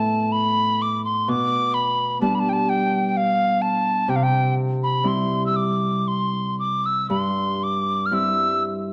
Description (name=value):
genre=celtic folk, Celtic slow air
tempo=58-65 BPM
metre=3/4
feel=rubato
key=unclear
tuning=A4 = 439 Hz
part: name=mellow tin whistle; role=melody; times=0.0-8.6 s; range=F5 to F6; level=-24 LUFS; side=equal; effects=none
part: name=Celtic harp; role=accompaniment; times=0.0-8.9 s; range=G2 to E4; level=-26 LUFS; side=equal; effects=none
room=wet recital hall reverb, RT60 1.6 s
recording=dark, warm production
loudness=-22 LUFS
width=mono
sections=0.0-8.9 A section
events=none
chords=0.0 Asus2; 1.3 G/B; 4.1 C